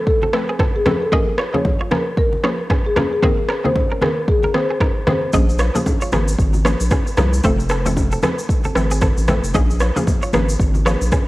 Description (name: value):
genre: afrobeats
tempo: 114 BPM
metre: 4/4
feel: swing 58% on 16ths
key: Bb minor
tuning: A4 = 440 Hz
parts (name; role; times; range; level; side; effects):
- marimba with medium mallets; melody; 0.0-5.2 s; Ab4 to Db5; -22 LUFS; left 1 dB; cassette tape, tape echo
- hollow square pluck; accompaniment; 0.0-11.1 s; Eb3 to A4; -23 LUFS; equal; chorus, cassette tape
- afro-pop drum kit; drums; 0.1-11.3 s; kick drum, rim click, shaker; -19 LUFS; equal; overdrive, cassette tape
- direct-recorded clean electric guitar; riff; 0.2-11.2 s; C4 to Eb5; -27 LUFS; right 3 dB; tremolo, cassette tape, tape echo
- congas; percussion; 0.2-11.3 s; none; -25 LUFS; left 1 dB; none
- saturated sub bass; bass; 5.3-11.1 s; F1 to C2; -18 LUFS; equal; none
room: light reverb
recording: home recording on cassette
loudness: -15 LUFS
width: side -18 dB against mid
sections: 0.0-11.3 A section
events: break 0.0-5.3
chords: 0.0 F; 1.1 Bbm7; 3.2 Abadd9; 5.3 Bbm7; 7.4 F; 9.5 Bbm7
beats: 0.07 0.60 | 1.12 1.65 2.17 2.70 | 3.23 3.75 4.28 4.81 | 5.33 5.86 6.39 6.91 | 7.44 7.96 8.49 9.02 | 9.54 10.07 10.60 11.12